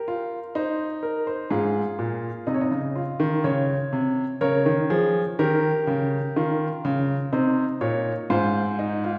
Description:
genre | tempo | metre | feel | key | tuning
classical, baroque-style 3-part fugue for grand piano | 62 BPM | 4/4 | straight | Ab major | A4 = 439 Hz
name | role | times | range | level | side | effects
clear baby grand piano | solo | 0.0-9.2 s | Ab2 to Eb5 | -24 LUFS | equal | none
room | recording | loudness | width
wet recital hall reverb, RT60 1.7 s | heard from further back in the room | -24 LUFS | mono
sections
0.0-9.2 A section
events
none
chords
0.0 Eb5; 1.5 Ab; 3.4 Db; 5.4 Eb7; 7.3 Ab

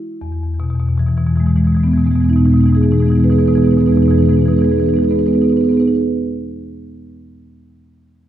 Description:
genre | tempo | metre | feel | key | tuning
classical, contemporary piece for solo marimba | 55 BPM | 4/4 | rubato | E major | A4 = 441 Hz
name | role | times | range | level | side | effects
marimba with soft mallets | solo | 0.0-6.0 s | E2 to B4 | -12 LUFS | equal | none
room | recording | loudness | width
wet recital hall reverb, RT60 1.4 s | heard from further back in the room | -12 LUFS | side -11 dB against mid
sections
0.2-4.6 A section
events
none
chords
0.2 Emaj7

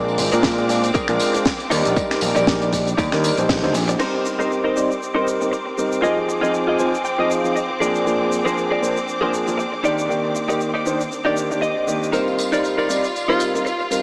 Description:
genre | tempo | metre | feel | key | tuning
nu-disco, nu disco | 118 BPM | 4/4 | swing 56% on 16ths | C minor | A4 = 440 Hz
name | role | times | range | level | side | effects
dark baby grand piano | accompaniment | 0.0-14.0 s | Eb3 to D5 | -24 LUFS | equal | low-pass filter, tape echo
clear studio string section | sustained chords | 0.0-14.0 s | C4 to D6 | -30 LUFS | equal | sidechain pumping, low-pass filter
direct-recorded clean electric guitar | riff | 0.0-13.8 s | Eb4 to Ab5 | -26 LUFS | equal | analog chorus, low-pass filter, tape echo
overdriven picked electric bass | bass | 0.0-3.9 s | Ab1 to Bb2 | -25 LUFS | equal | none
tambourine | percussion | 0.1-4.0, 12.1-14.0 s | none | -34 LUFS | equal | tape echo
tight funk drum kit | drums | 0.2-14.0 s | crash cymbal, finger snaps, hi-hat, shaker, snare drum | -28 LUFS | equal | tape echo
electronic kick drum | drums | 0.4-3.6 s | none | -27 LUFS | equal | none
raspy tenor saxophone | melody | 13.3-13.4 s | F4 | -26 LUFS | equal | tape echo
room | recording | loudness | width
wet echo chamber reverb, RT60 2.5 s | echo-heavy mix, small speaker sound | -20 LUFS | mono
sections
0.0-4.0 A section; 4.0-14.0 B section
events
band accent 3.5; clean electric guitar fill 6.5-8.1, 11.4-12.1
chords
0.0 Bb7; 1.7 Ebmaj7; 4.0 Cm7; 6.0 Fm7; 7.8 Bb7; 9.8 Ebmaj7; 12.1 Cm7

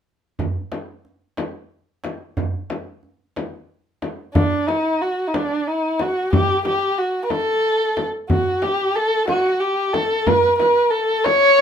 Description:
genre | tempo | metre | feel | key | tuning
Persian modal ensemble | 61 BPM (dotted quarters) | 6/8 | straight | unclear | A4 = 440 Hz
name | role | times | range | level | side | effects
frame drum | percussion | 0.4-11.4 s | none | -25 LUFS | left 4 dB | none
tombak | percussion | 0.4-11.6 s | none | -25 LUFS | right 3 dB | none
warm kamancheh | melody | 4.3-11.6 s | D4 to C#5 | -17 LUFS | equal | none
room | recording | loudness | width
light reverb | minimal, uncompressed stereo recording | -17 LUFS | side -8 dB against mid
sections
0.4-4.3 A section; 4.3-11.6 B section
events
none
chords
none

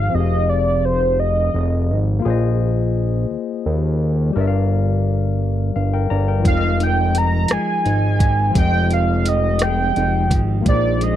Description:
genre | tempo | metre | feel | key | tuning
slow six-eight R&B | 57 BPM (dotted quarters) | 6/8 | straight | F dorian | A4 = 436 Hz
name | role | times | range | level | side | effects
warm velvety synth lead | melody | 0.0-2.0, 6.5-11.2 s | C5 to Bb5 | -20 LUFS | right 2 dB | chorus, slapback echo
barky tine electric piano | accompaniment | 0.0-11.2 s | F3 to Bb5 | -24 LUFS | left 9 dB | overdrive
fat analog bass | bass | 0.0-11.2 s | F1 to Eb2 | -18 LUFS | right 1 dB | none
electric guitar at the edge of break-up | second line | 6.4-11.2 s | Bb2 to G4 | -26 LUFS | right 4 dB | none
smooth R&B drum kit | drums | 6.5-11.2 s | hi-hat, kick drum, rim click | -18 LUFS | right 1 dB | none
room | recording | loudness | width
little or no reverb | dry, close 1970s-style studio recording | -16 LUFS | side -11 dB against mid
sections
0.0-11.2 A section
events
none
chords
0.0 Fm9; 2.2 Bb7sus4; 4.3 Gm7; 6.5 Fm9; 10.7 Bb7sus4

